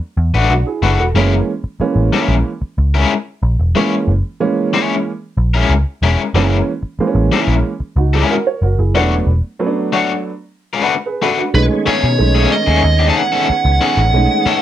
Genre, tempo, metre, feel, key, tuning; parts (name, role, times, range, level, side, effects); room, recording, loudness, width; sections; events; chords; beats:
funk; 92 BPM; 4/4; straight; A4 = 441 Hz
vintage muted picked electric bass; bass; 0.2-14.5 s; E1 to B2; -14 LUFS; equal
crunchy overdriven guitar; accompaniment; 0.3-14.6 s; G#3 to C#5; -16 LUFS; left 5 dB; tremolo
warm upright piano; stabs; 0.5-14.5 s; E3 to C#5; -18 LUFS; right 4 dB
biting lead guitar; melody; 11.5-14.6 s; B4 to A5; -16 LUFS; right 3 dB; overdrive
tonewheel organ; sustained chords; 11.6-14.6 s; D#3 to G#4; -23 LUFS; right 1 dB; chorus vibrato, fast rotary speaker
light reverb; -13 LUFS; side -12 dB against mid
0.0-11.5 A section; 11.5-14.6 B section
break 10.2-11.5
0.0 E9sus4; 1.2 F#9; 9.0 E9sus4; 11.5 B13
0.50 | 1.15 1.80 2.45 3.10 | 3.75 4.40 5.05 5.70 | 6.35 7.00 7.65 8.30 | 8.95 9.60 10.25 10.90 | 11.55 12.19 12.84 13.49 | 14.14